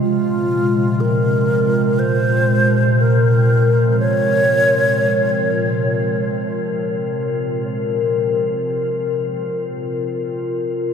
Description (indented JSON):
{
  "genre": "ambient",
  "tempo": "free time",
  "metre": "none",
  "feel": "none",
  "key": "unclear",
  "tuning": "A4 = 439 Hz",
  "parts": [
    { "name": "mellow hollow alto flute", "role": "melody", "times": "0.0-5.9 s", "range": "F4 to Db5", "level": "-18 LUFS", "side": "equal", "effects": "diffuse ambient delay" },
    { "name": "warbly tape-like pad", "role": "sustained chords", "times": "0.0-10.9 s", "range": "Bb2 to C5", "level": "-18 LUFS", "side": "left 1 dB", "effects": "chorus, built-in reverb" },
    { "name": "organ-like drone", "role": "drone", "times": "0.0-10.9 s", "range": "C3 to F3", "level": "-25 LUFS", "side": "right 1 dB", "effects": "ensemble chorus, built-in reverb" }
  ],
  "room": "wet huge ambient reverb, RT60 7.7 s",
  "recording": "in a vast, echoing space",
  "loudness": "-15 LUFS",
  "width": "side -7 dB against mid",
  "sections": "0.0-10.9 A section",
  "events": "filter sweep on ambient pad 0.0-10.9",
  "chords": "0.0 Bbm7; 8.0 C7sus4",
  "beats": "free time"
}